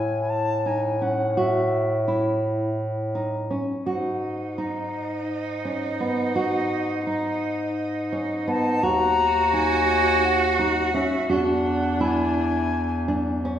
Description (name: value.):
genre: contemporary instrumental, chamber music in an uneven meter.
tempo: 169 BPM (eighths).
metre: 7/8.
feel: straight.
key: A lydian.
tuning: A4 = 439 Hz.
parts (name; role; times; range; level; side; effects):
bright reedy baroque flute; melody; 0.0-2.2, 8.5-13.4 s; E5 to A#5; -26 LUFS; left 3 dB; none.
nylon-string guitar; arpeggios; 0.0-13.6 s; B3 to F#4; -27 LUFS; right 1 dB; none.
warm bass clarinet; bass; 0.0-13.6 s; D#2 to A2; -26 LUFS; left 1 dB; none.
rich cello; second line; 3.9-13.4 s; D4 to F#4; -26 LUFS; right 4 dB; none.
room: wet recital hall reverb, RT60 1.5 s.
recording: heard from further back in the room.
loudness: -21 LUFS.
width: side -10 dB against mid.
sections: 0.0-13.6 A section.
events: none.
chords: 0.0 A; 3.9 G#m7; 8.8 D#m7; 11.3 E7.